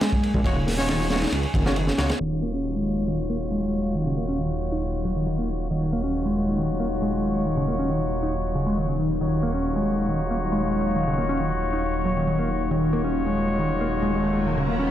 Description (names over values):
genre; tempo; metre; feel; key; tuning
breakbeat, breaks; 137 BPM; 4/4; straight; Eb minor; A4 = 440 Hz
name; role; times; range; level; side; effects
deep dark ambient pad; sustained chords; 0.0-14.9 s; Gb3 to Ab5; -31 LUFS; left 2 dB; chorus, built-in reverb, vintage 12-bit sampler grit, sidechain pumping
picked electric bass; riff; 0.0-14.9 s; Db3 to Eb4; -26 LUFS; equal; vintage 12-bit sampler grit, low-pass filter, dub echo
crunchy breakbeat drum kit; drums; 0.0-2.2 s; hi-hat, kick drum, ride cymbal, snare drum; -26 LUFS; equal; dub echo
detuned saw bass; bass; 0.3-14.9 s; Eb1 to Db2; -28 LUFS; equal; tube saturation
warm horn section; stabs; 0.4-14.9 s; Eb4 to Db5; -30 LUFS; left 2 dB; vintage 12-bit sampler grit, low-pass filter, dub echo
riser; sound effects; 13.7-14.9 s; none; -33 LUFS; left 1 dB; none
room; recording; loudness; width
moderate plate reverb, RT60 1.0 s, small room ambience; echo-heavy mix, low-pass filter; -22 LUFS; side -11 dB against mid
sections
0.0-2.2 A section; 2.2-14.9 B section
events
filter sweep on picked electric bass 0.0-2.2, 2.2-14.9; filter sweep 2.2-14.9; riser 13.7-14.9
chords
0.0 Ebm9